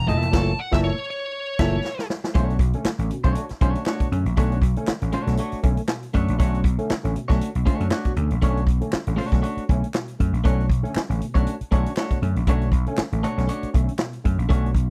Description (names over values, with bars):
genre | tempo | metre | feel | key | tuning
funk | 119 BPM | 4/4 | swing 56% on 16ths | B minor | A4 = 440 Hz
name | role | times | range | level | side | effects
nasal lead guitar with a parked wah | melody | 0.0-2.1 s | C#5 to A5 | -30 LUFS | equal | overdrive
vintage slap bass | bass | 0.0-14.9 s | E1 to F#2 | -25 LUFS | equal | none
clean electric guitar | accompaniment | 0.1-14.7 s | A3 to E5 | -30 LUFS | equal | none
overdriven tine electric piano | stabs | 0.1-14.9 s | A#2 to C#4 | -32 LUFS | equal | ensemble chorus
swinging big-band drum kit | drums | 0.1-14.9 s | crash cymbal, hi-hat, kick drum, snare drum | -25 LUFS | equal | none
group handclap | percussion | 2.9-14.1 s | none | -38 LUFS | equal | none
room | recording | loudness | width
small room ambience | dry, close 1970s-style studio recording | -23 LUFS | mono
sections
0.0-2.4 A section; 2.4-14.9 B section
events
band accent 0.3-2.4; drum fill 1.9-2.4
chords
0.0 F#7#9; 2.4 Bm9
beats
| 0.34 0.84 1.34 1.85 | 2.35 2.86 3.37 3.87 | 4.38 4.88 5.39 5.89 | 6.40 6.90 7.41 7.92 | 8.42 8.93 9.44 9.94 | 10.45 10.96 11.46 11.97 | 12.47 12.98 13.49 13.99 | 14.50